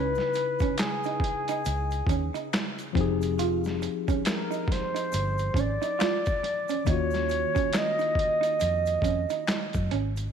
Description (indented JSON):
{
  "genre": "R&B, neo-soul",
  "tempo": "69 BPM",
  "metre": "4/4",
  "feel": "swing 60% on 16ths",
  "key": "unclear",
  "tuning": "A4 = 440 Hz",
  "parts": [
    { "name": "mellow concert flute", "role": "melody", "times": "0.0-9.9 s", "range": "Ab4 to Eb5", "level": "-28 LUFS", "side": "right 1 dB", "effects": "slapback echo" },
    { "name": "electric guitar through a small old amp", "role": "second line", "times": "0.0-10.1 s", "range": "C4 to F4", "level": "-33 LUFS", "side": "right 14 dB", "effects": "none" },
    { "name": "tine electric piano", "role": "accompaniment", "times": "0.0-10.3 s", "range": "Db3 to Cb5", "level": "-34 LUFS", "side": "left 12 dB", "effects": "medium stereo tremolo" },
    { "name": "vintage muted fingered electric bass", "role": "bass", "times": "0.0-10.3 s", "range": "F1 to Gb2", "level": "-30 LUFS", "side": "equal", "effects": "none" },
    { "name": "egg shaker and finger snaps", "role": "percussion", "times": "0.1-10.3 s", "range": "none", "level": "-42 LUFS", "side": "left 12 dB", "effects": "none" },
    { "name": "boom bap sampler-style drum kit", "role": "drums", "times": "0.2-10.3 s", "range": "finger snaps, hi-hat, kick drum, snare drum", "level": "-30 LUFS", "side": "equal", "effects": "overdrive" }
  ],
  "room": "moderate echo chamber reverb, RT60 2.1 s",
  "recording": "1960s-style stereo with parts hard left and right",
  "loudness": "-24 LUFS",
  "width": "side -7 dB against mid",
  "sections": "0.0-10.3 A section",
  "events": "none",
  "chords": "0.0 Dbm9; 3.0 Fm9; 6.9 Ebm9"
}